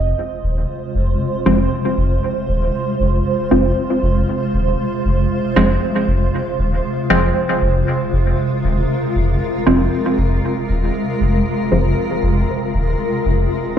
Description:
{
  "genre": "dub techno",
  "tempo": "117 BPM",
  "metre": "4/4",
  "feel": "swing 55% on 16ths",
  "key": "F minor",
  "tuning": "A4 = 440 Hz",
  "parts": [
    { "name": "granular cloud pad", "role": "sustained chords", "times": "0.0-13.8 s", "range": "C3 to C5", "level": "-19 LUFS", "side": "right 1 dB", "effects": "built-in reverb" },
    { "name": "soft dub sub bass", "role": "bass", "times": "0.0-13.5 s", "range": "Eb1 to F1", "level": "-18 LUFS", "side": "equal", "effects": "none" },
    { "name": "filtered dub chord stab", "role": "stabs", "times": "1.5-11.9 s", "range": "F3 to C4", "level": "-18 LUFS", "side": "equal", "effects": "chorus, phaser, dub echo" }
  ],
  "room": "light reverb, digital ambience",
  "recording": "played on a big sound system in a bare room, large studio reverb",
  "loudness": "-15 LUFS",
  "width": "side -9 dB against mid",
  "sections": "0.0-13.8 A section",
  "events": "filter sweep on synth stab 0.0-13.8",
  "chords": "0.0 Fm"
}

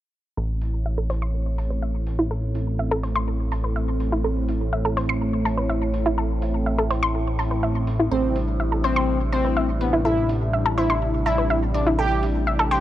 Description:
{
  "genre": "melodic techno",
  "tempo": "124 BPM",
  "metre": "4/4",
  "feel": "straight",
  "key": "A minor",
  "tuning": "A4 = 440 Hz",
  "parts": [
    { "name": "warm analog pad", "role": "sustained chords", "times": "0.4-12.8 s", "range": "C3 to E4", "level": "-28 LUFS", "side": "equal", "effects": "chorus" },
    { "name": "analog pluck", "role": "arpeggios", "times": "0.4-12.8 s", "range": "E4 to C6", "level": "-26 LUFS", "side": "equal", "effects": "chorus, tape echo" },
    { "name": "fat analog bass", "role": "bass", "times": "0.4-12.8 s", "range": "A1", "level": "-24 LUFS", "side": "equal", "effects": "none" },
    { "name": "overtone-sweeping drone", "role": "drone", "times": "0.9-12.8 s", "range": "A2", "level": "-34 LUFS", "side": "right 2 dB", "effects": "chorus, built-in reverb" },
    { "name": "electronic hi-hat", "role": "drums", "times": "0.6-12.8 s", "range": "none", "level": "-48 LUFS", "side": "right 1 dB", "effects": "low-pass filter on hats, low-pass filter on room" },
    { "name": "analog synth brass", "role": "melody", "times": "8.1-12.8 s", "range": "B3 to G4", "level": "-25 LUFS", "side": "left 1 dB", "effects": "chorus, analog delay" },
    { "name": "glassy wavetable pluck", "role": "second line", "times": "8.1-12.8 s", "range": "B4 to G5", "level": "-31 LUFS", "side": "right 2 dB", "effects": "chorus, tape echo" }
  ],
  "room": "little or no reverb",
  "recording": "dry, gritty hardware recording, transformer saturation",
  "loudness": "-20 LUFS",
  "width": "side -13 dB against mid",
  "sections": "0.4-12.8 A section",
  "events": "filter sweep on synth arpeggio sound 0.4-12.8; filter sweep on analog synth pad 0.4-12.8",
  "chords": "0.4 Am; 8.1 Cadd9/A"
}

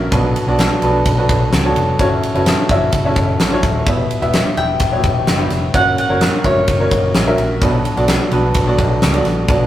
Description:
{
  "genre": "piano-driven pop",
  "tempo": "128 BPM",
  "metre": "4/4",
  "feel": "straight",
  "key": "B minor",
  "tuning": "A4 = 438 Hz",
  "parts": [
    { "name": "bright upright piano", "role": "accompaniment", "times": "0.0-9.7 s", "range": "B2 to G5", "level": "-17 LUFS", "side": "equal", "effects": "none" },
    { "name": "vintage muted fingered electric bass", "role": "bass", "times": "0.0-9.7 s", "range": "D#1 to C#2", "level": "-20 LUFS", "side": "equal", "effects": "none" },
    { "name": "huge arena drum kit", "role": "drums", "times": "0.1-9.6 s", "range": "kick drum, ride cymbal, snare drum", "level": "-17 LUFS", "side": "equal", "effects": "none" },
    { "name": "bowl-back mandolin", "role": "melody", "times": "4.6-7.3 s", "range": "C#5 to G5", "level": "-18 LUFS", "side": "equal", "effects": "none" }
  ],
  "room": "wet stone room reverb, RT60 1.1 s",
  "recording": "rough rehearsal-room recording",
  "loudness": "-13 LUFS",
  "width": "side -12 dB against mid",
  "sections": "0.0-9.7 A section",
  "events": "none",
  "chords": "0.1 Bm7; 2.0 F#m7; 3.9 Em; 5.7 F#; 7.6 Bm7"
}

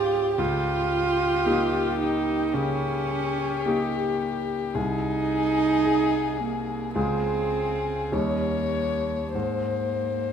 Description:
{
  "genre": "classical, slow romantic movement for piano trio",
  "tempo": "48-56 BPM",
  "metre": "4/4",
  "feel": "rubato",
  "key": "unclear",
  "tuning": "A4 = 444 Hz",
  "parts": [
    { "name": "dark violin", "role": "melody", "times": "0.0-10.3 s", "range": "F4 to Db5", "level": "-29 LUFS", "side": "left 8 dB", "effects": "none" },
    { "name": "warm cello", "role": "second line", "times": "0.0-10.3 s", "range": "Bb3 to G4", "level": "-26 LUFS", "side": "right 5 dB", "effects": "none" },
    { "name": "clear grand piano", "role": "accompaniment", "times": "0.0-10.3 s", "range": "C2 to Ab4", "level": "-28 LUFS", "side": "equal", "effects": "none" }
  ],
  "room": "moderate recital hall reverb, RT60 1.4 s",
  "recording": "none",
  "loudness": "-23 LUFS",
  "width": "side -7 dB against mid",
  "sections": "0.0-10.3 A section",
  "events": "none",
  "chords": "0.4 Eb7/Db; 4.8 Ab/C; 7.0 Db; 8.1 Eb7; 9.3 Ab"
}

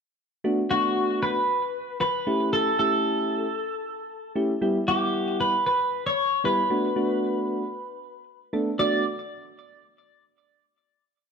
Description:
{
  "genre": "pop",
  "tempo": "115 BPM",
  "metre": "4/4",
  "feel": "straight",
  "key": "unclear",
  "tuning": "A4 = 440 Hz",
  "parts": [
    { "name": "soft electric-piano-like synth keys", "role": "accompaniment", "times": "0.4-9.0 s", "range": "G3 to F#5", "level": "-26 LUFS", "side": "equal", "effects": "chorus" },
    { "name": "twelve-string electric guitar", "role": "melody", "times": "0.7-9.0 s", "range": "F#4 to D5", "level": "-24 LUFS", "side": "equal", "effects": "none" }
  ],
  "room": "moderate echo chamber reverb, RT60 1.7 s",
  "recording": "dark, warm production",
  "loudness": "-22 LUFS",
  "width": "side -6 dB against mid",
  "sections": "0.4-8.8 verse; 8.8-10.9 final chord",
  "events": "none",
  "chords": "0.4 D6; 2.3 A7; 4.6 Em; 6.7 Bm7"
}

